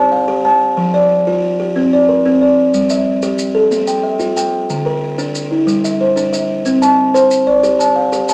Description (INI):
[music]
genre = southern african traditional, mbira-style interlocking cycle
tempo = 122 BPM (dotted quarters)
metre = 12/8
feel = straight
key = G equiheptatonic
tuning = A4 = 441 Hz
[part]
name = buzzing kalimba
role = arpeggios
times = 0.0-8.3 s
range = D3 to A5-29c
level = -14 LUFS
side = equal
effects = none
[part]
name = maracas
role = percussion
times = 2.7-8.3 s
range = none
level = -30 LUFS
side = equal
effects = none
[sound]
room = wet studio reverb, RT60 0.6 s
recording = none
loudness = -14 LUFS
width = mono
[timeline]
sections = 0.0-8.3 A section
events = none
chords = 0.0 N.C.; 0.8 F5; 2.7 G5; 3.7 Bb5; 4.7 Bb/D; 5.7 G5; 6.7 C5